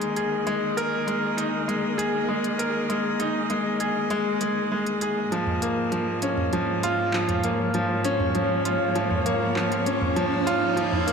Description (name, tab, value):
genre	piano and strings electronica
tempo	99 BPM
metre	4/4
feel	straight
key	unclear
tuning	A4 = 440 Hz
part	warm string quartet	sustained chords	0.0-11.1 s	Ab2 to Eb5	-29 LUFS	equal	none
part	bright grand piano	riff	0.0-11.1 s	F3 to Bb4	-24 LUFS	equal	tape echo
part	deep house drum kit	drums	0.0-11.1 s	handclaps, hi-hat, toms	-32 LUFS	right 2 dB	none
part	riser	sound effects	6.9-11.1 s	none	-33 LUFS	right 3 dB	none
room	wet echo chamber reverb, RT60 2.6 s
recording	none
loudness	-22 LUFS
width	side -6 dB against mid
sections	0.0-11.1 A section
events	build-up 0.0-11.1; riser 6.9-11.1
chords	0.0 Absus2; 5.3 Bbm7/Ab